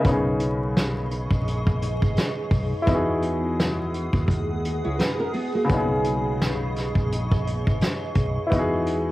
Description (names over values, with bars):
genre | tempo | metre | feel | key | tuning
lo-fi hip hop | 85 BPM | 4/4 | swing 60% on 16ths | B major | A4 = 445 Hz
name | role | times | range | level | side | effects
warm upright piano | accompaniment | 0.0-9.1 s | C#3 to D#5 | -26 LUFS | left 1 dB | cassette tape, plate reverb
granular cloud pad | sustained chords | 0.7-9.1 s | G#4 to D#6 | -31 LUFS | right 2 dB | built-in reverb, cassette tape
vintage brush drum kit | drums | 0.0-9.1 s | hi-hat, kick drum, snare drum | -24 LUFS | equal | cassette tape
mellow fretless electric bass | bass | 0.1-9.1 s | G#1 to E2 | -27 LUFS | equal | ensemble chorus
nylon-string guitar | second line | 4.8-5.9 s | A#3 to C#5 | -30 LUFS | right 1 dB | cassette tape, analog delay
room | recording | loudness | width
moderate booth ambience, RT60 0.3 s | home recording on cassette, vinyl crackle | -21 LUFS | side -17 dB against mid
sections
0.0-9.1 A section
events
none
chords
0.0 B69; 2.9 Emaj9; 5.7 B69; 8.5 Emaj9